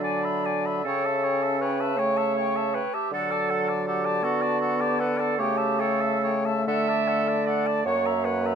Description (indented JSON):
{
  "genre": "classical, slow romantic movement for wind quintet",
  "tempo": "44-54 BPM (dotted quarters)",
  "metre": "6/8",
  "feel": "rubato",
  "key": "D major",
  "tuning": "A4 = 439 Hz",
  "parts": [
    { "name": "silver concert flute", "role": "melody", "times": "0.0-8.6 s", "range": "F#5 to B5", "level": "-32 LUFS", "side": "left 10 dB", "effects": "none" },
    { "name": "clear oboe", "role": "second line", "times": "0.0-8.6 s", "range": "A4 to E5", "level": "-32 LUFS", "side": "left 6 dB", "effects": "none" },
    { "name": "clear clarinet", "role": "accompaniment", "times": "0.0-8.6 s", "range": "D4 to E5", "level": "-28 LUFS", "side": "right 8 dB", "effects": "none" },
    { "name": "warm French horn", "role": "accompaniment", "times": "0.0-8.6 s", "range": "F#3 to C#4", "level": "-31 LUFS", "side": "left 3 dB", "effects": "none" },
    { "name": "clear bassoon", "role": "bass", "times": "0.0-8.6 s", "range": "F#2 to D3", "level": "-28 LUFS", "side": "right 2 dB", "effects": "none" }
  ],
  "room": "light reverb",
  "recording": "close, detailed microphones",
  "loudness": "-22 LUFS",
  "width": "side -7 dB against mid",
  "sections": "0.0-8.6 A section",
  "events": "none",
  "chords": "0.0 E7/D; 0.8 A7/C#; 3.1 D; 5.4 A7/C#; 6.7 D; 7.8 F#7"
}